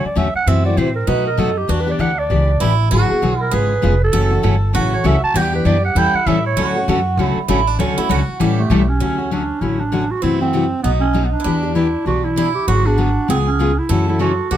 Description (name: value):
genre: acoustic string swing (jazz manouche)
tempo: 197 BPM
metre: 4/4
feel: swing 60% on 8ths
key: D major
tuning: A4 = 440 Hz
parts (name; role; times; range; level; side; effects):
- growling clarinet; melody; 0.0-14.6 s; A3 to A5; -20 LUFS; right 3 dB; none
- picked swing-style acoustic guitar; second line; 0.0-14.6 s; C4 to A4; -23 LUFS; right 6 dB; none
- picked steel-string acoustic guitar; accompaniment; 0.0-14.6 s; B2 to A4; -20 LUFS; left 5 dB; none
- upright bass; bass; 0.0-14.6 s; E#1 to B2; -19 LUFS; equal; none
- picked steel-string acoustic guitar; accompaniment; 4.1-8.8, 13.9-14.6 s; D3 to B4; -25 LUFS; right 7 dB; none
room: light reverb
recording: close, detailed microphones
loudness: -14 LUFS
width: side -11 dB against mid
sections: 0.0-9.0 A section; 9.0-14.6 B section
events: clarinet solo 0.0-9.0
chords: 0.5 F#m7b5; 1.1 B7; 1.7 Em7; 2.9 G#m7b5; 3.5 C#7; 4.1 F#m7; 5.4 Em7; 6.0 A7; 6.6 Dmaj7; 8.4 A7; 9.0 Dmaj7; 10.2 F#m7b5; 10.8 B7; 11.5 Em7; 12.7 G#m7b5; 13.3 C#7; 13.9 F#m7